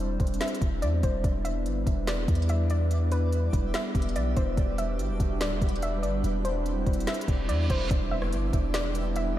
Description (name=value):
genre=hip hop, atmospheric cloud-rap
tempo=144 BPM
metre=4/4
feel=half-time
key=E minor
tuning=A4 = 440 Hz
part: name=hollow soft pad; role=sustained chords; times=0.0-9.4 s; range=G3 to C5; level=-33 LUFS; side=equal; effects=chorus, sidechain pumping
part: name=long sustained 808-style bass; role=bass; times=0.0-9.4 s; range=D1 to E2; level=-28 LUFS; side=equal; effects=none
part: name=smooth R&B drum kit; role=drums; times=0.2-9.3 s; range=hi-hat, kick drum, rim click, snare drum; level=-30 LUFS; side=equal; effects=none
part: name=soft round pluck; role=melody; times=0.4-9.4 s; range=B4 to E5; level=-34 LUFS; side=equal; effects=chorus, low-pass filter, tape echo
part: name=twinkling granular texture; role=texture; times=1.8-9.4 s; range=G3 to E5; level=-40 LUFS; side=right 1 dB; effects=built-in reverb
part: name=reverse cymbal and impact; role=sound effects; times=7.2-9.4 s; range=none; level=-38 LUFS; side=right 2 dB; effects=none
room=moderate cathedral reverb, RT60 5.7 s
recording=dreamy mix soaked in reverb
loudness=-25 LUFS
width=side -13 dB against mid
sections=0.0-7.9 A section; 7.9-9.4 B section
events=reverse cymbal 7.2-7.9; impact 7.9-9.4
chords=0.0 Cadd9/E; 1.2 Em7; 4.6 Gmaj7/E; 6.2 Cadd9/E; 7.9 Em7